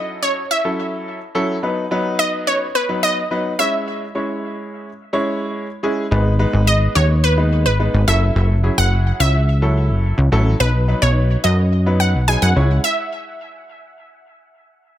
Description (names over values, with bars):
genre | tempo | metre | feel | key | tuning
dance-pop | 107 BPM | 4/4 | straight | F# dorian | A4 = 440 Hz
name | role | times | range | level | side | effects
wide unison pluck | melody | 0.0-14.8 s | B4 to G#5 | -20 LUFS | equal | dub echo
clear concert grand piano | accompaniment | 0.0-12.8 s | F#3 to C#5 | -22 LUFS | equal | none
plucky analog bass | bass | 6.1-12.8 s | F#1 to F#2 | -15 LUFS | equal | none
room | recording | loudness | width
light reverb, small room ambience | echo-heavy mix | -15 LUFS | side -12 dB against mid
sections
0.0-15.0 A section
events
stop 12.8-15.0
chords
0.0 F#m7; 1.6 B; 3.6 C#m; 6.1 G#m; 8.1 F#m7; 10.6 B; 12.6 C#m